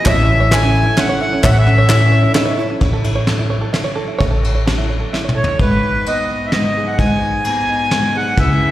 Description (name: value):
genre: indie folk with a building arrangement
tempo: 130 BPM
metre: 3/4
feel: straight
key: unclear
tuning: A4 = 440 Hz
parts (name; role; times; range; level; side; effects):
- accordion; melody; 0.0-2.3, 5.4-8.7 s; B4 to G#5; -18 LUFS; equal; slapback echo
- mellow French horn; second line; 0.0-2.8 s; C#4 to E4; -24 LUFS; left 2 dB; slapback echo
- picked twelve-string acoustic guitar; accompaniment; 0.0-2.8 s; A2 to A4; -27 LUFS; left 4 dB; slapback echo
- warm concert grand piano; accompaniment; 0.0-2.8 s; A1 to E5; -27 LUFS; left 3 dB; none
- open-back banjo; arpeggios; 0.0-5.6 s; C#4 to C#5; -22 LUFS; right 4 dB; slapback echo
- upright bass; bass; 0.1-8.6 s; G#1 to C#2; -15 LUFS; equal; none
- soft brush drum kit; drums; 0.1-8.5 s; hi-hat, kick drum, ride cymbal, snare drum, toms; -20 LUFS; equal; none
- group handclap; percussion; 0.1-2.5 s; none; -24 LUFS; left 2 dB; slapback echo
- fingerpicked steel-string acoustic guitar; accompaniment; 5.6-8.7 s; G#2 to B4; -20 LUFS; left 1 dB; slapback echo
room: studio reverb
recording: live gig heard through the venue's PA, recital hall reverb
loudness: -13 LUFS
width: side -14 dB against mid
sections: 0.0-2.8 A section; 2.8-5.6 B section; 5.6-8.7 C section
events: drum fill 5.1-5.6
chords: 0.0 A; 5.6 G#m